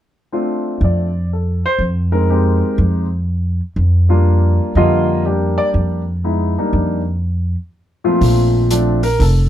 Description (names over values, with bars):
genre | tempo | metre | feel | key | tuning
jazz piano trio | 122 BPM | 4/4 | swing 66% on 8ths | Bb major | A4 = 441 Hz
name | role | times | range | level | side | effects
warm grand piano | melody | 0.3-9.5 s | Bb2 to Eb5 | -17 LUFS | left 1 dB | none
upright bass | bass | 0.8-9.5 s | F1 to F2 | -15 LUFS | equal | none
open jazz drum kit | drums | 8.2-9.3 s | hi-hat, kick drum | -23 LUFS | right 1 dB | none
room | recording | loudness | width
light reverb | dark, warm production | -14 LUFS | side -11 dB against mid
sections
0.3-8.2 A section; 8.2-9.5 B section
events
none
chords
0.3 Dm7; 8.2 Bbmaj7